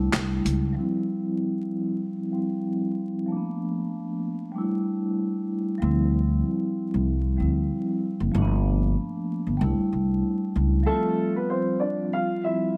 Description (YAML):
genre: hip hop, boom-bap hip-hop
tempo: 95 BPM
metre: 4/4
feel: swing 55% on 16ths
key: D dorian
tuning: A4 = 437 Hz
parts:
  - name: vibraphone with soft mallets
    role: accompaniment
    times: 0.0-12.8 s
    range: F3 to F4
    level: -28 LUFS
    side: equal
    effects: cassette tape, high-pass filter, low-pass filter
  - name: upright bass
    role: bass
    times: 0.0-0.7, 5.8-10.8 s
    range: F#1 to D2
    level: -26 LUFS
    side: equal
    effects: none
  - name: boom bap sampler-style drum kit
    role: drums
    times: 0.1-0.6 s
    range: handclaps, hi-hat, snare drum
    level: -30 LUFS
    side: equal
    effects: none
  - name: dark upright piano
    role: melody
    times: 10.9-12.8 s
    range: A3 to F5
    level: -28 LUFS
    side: equal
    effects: high-pass filter, low-pass filter
room: moderate echo chamber reverb, RT60 1.6 s, studio ambience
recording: vinyl crackle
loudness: -26 LUFS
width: mono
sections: 0.8-10.9 A section; 10.9-12.8 B section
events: filter sweep on vibraphone 0.8-10.9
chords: 0.0 C69; 0.8 Cadd11/F; 3.3 Bm7b5/F; 4.5 A7sus4/G; 5.8 Dm11; 8.3 G9; 9.6 C69; 10.9 Dm11